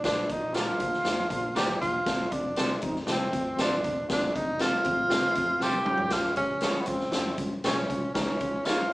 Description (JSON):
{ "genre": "uptempo 1960s-style soul", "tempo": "118 BPM", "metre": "4/4", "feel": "straight", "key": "unclear", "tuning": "A4 = 442 Hz", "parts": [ { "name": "breathy tenor saxophone", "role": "melody", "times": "0.0-8.9 s", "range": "Cb4 to G4", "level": "-28 LUFS", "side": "equal", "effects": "none" }, { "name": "tine electric piano", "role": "accompaniment", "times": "0.0-8.9 s", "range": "F3 to G4", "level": "-33 LUFS", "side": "equal", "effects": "overdrive, fast stereo tremolo" }, { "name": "fingered electric bass", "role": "bass", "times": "0.0-8.8 s", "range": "Eb1 to Bb2", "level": "-42 LUFS", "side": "equal", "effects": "none" }, { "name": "swinging big-band drum kit", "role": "drums", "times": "0.0-8.8 s", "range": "hi-hat, kick drum, snare drum, toms", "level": "-31 LUFS", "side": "equal", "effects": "none" }, { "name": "tambourine", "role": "percussion", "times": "0.0-8.8 s", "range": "none", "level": "-42 LUFS", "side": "left 2 dB", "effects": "none" }, { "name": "electric guitar at the edge of break-up", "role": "stabs", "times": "0.5-8.8 s", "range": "Bb3 to Db5", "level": "-34 LUFS", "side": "right 1 dB", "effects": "none" } ], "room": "wet large studio reverb, RT60 1.1 s", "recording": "band playing live in one room, small speaker sound", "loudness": "-25 LUFS", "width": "side -20 dB against mid", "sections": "0.0-8.9 A section", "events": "drum fill 5.6-6.1", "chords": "0.0 Bb; 2.1 F; 5.9 Db", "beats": "| 0.04 0.55 1.05 1.56 | 2.07 2.58 3.08 3.59 | 4.10 4.60 5.11 5.62 | 6.12 6.63 7.14 7.65 | 8.16 8.66" }